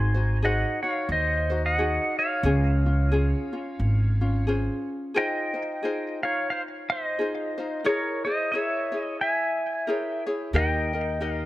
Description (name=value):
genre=Hawaiian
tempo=89 BPM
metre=4/4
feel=swing 58% on 8ths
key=Db major, Ab major from 5.2 s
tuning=A4 = 440 Hz
part: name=pedal steel guitar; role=melody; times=0.0-11.5 s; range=Bb4 to C6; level=-27 LUFS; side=equal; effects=tape echo
part: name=ukulele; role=accompaniment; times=0.0-11.5 s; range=Db4 to Eb5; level=-29 LUFS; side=left 2 dB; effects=none
part: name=upright bass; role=bass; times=0.0-4.7, 10.5-11.4 s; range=Ab1 to Eb2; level=-24 LUFS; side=equal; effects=none
room=light reverb, studio reverb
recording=none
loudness=-23 LUFS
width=side -16 dB against mid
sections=0.0-5.2 A section; 5.2-11.5 B section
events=none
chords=0.0 Ab7; 2.5 Dbmaj7; 5.2 Ab6; 7.8 Dbm6; 10.5 Eb